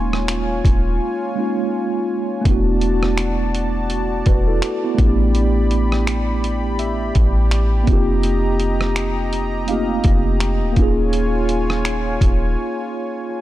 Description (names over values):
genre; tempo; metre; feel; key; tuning
contemporary R&B; 83 BPM; 4/4; swing 58% on 16ths; unclear; A4 = 442 Hz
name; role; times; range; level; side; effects
mellow tine electric piano; accompaniment; 0.0-13.4 s; G#3 to B4; -22 LUFS; right 2 dB; medium stereo tremolo
warm analog pad; sustained chords; 0.0-13.4 s; E#4 to B5; -26 LUFS; left 1 dB; chorus
soft 808-style bass; bass; 0.0-12.6 s; D#1 to A1; -20 LUFS; equal; none
concert harp; texture; 0.0-0.5, 6.8-13.4 s; E5 to C6; -35 LUFS; right 2 dB; ping-pong delay
dusty soul sampler-style drum kit; drums; 0.1-12.4 s; finger snaps, hi-hat, kick drum, rim click; -19 LUFS; equal; none
room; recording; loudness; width
little or no reverb; dark, warm production; -16 LUFS; side -14 dB against mid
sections
0.0-13.4 A section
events
break 1.0-2.5, 12.6-13.4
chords
0.0 D#9sus4; 2.5 E9sus4; 5.0 A9sus4; 7.9 F9sus4; 10.8 D#9sus4